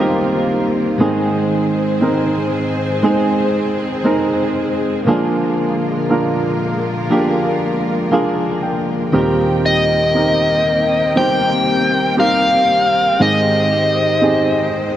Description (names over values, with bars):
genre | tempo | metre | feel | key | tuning
pop ballad | 59 BPM | 4/4 | straight | Eb major | A4 = 440 Hz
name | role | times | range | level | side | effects
warm grand piano | accompaniment | 0.0-15.0 s | C2 to G5 | -18 LUFS | right 2 dB | none
warm symphonic string section | sustained chords | 0.0-15.0 s | D3 to G5 | -22 LUFS | left 1 dB | none
twelve-string electric guitar | arpeggios | 0.0-15.0 s | Ab2 to Bb4 | -21 LUFS | left 1 dB | digital delay
smooth overdriven lead guitar | melody | 9.7-15.0 s | Eb5 to G5 | -15 LUFS | equal | none
room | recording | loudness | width
moderate lush hall reverb, RT60 2.6 s | none | -14 LUFS | side -11 dB against mid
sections
0.0-15.0 A section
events
grand piano fill 7.6-9.1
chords
0.0 Cm7; 1.0 Ab; 5.1 Bb7; 9.1 Eb6; 13.2 Abmaj7